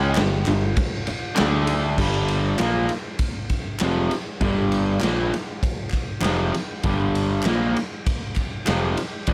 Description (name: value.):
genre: garage rock duo or trio.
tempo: 99 BPM.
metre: 4/4.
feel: straight.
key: G minor.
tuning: A4 = 440 Hz.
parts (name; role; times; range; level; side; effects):
raw garage guitar; riff; 0.0-9.3 s; F2 to D4; -25 LUFS; equal; overdrive.
picked electric bass; bass; 0.0-9.3 s; F1 to D2; -27 LUFS; equal; none.
group handclap; percussion; 0.1-8.8 s; none; -36 LUFS; equal; none.
raw garage drum kit; drums; 0.2-9.3 s; crash cymbal, kick drum, ride cymbal, snare drum; -28 LUFS; equal; none.
room: light reverb.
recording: none.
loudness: -23 LUFS.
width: mono.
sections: 0.0-2.0 A section; 2.0-9.3 B section.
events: none.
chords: 0.0 G5; 1.4 D5; 2.0 Gm.